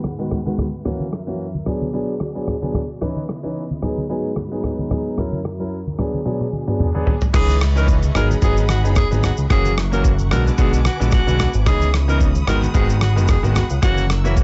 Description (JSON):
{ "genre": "afrobeats", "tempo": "111 BPM", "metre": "4/4", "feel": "swing 55% on 16ths", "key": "F# mixolydian", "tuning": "A4 = 440 Hz", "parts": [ { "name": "rich symphonic string section", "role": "sustained chords", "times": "0.0-14.4 s", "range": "F#2 to E6", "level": "-34 LUFS", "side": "equal", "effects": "none" }, { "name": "dusty soul sampler-style drum kit", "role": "drums", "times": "0.0-14.4 s", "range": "crash cymbal, kick drum, rim click, shaker, toms", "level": "-23 LUFS", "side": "equal", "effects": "none" }, { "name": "congas", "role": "percussion", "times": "0.0-14.1 s", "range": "none", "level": "-30 LUFS", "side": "equal", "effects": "none" }, { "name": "bright grand piano", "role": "accompaniment", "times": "0.2-14.4 s", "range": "C#3 to B4", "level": "-26 LUFS", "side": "equal", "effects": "none" }, { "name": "bright alto saxophone", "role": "melody", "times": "7.3-14.4 s", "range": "E4 to A#4", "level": "-28 LUFS", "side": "equal", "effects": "none" }, { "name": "fat analog bass", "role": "bass", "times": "7.3-14.4 s", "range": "F#1 to C#2", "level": "-20 LUFS", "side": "equal", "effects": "none" } ], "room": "small room ambience", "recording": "low-pass filter, nothing above 7.9 kHz", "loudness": "-19 LUFS", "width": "mono", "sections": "0.0-7.3 A section; 7.3-14.4 B section", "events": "filter sweep 0.0-7.3; drum fill 6.3-7.3", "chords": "0.0 G#m7; 0.9 F#7; 1.7 Bm6; 3.0 C#m9; 3.8 G#m7; 5.2 F#7; 6.0 Bm6; 7.3 C#m9; 8.2 G#m7; 9.5 F#7; 10.3 Bm6; 11.7 C#m9; 12.5 G#m7; 13.8 F#7" }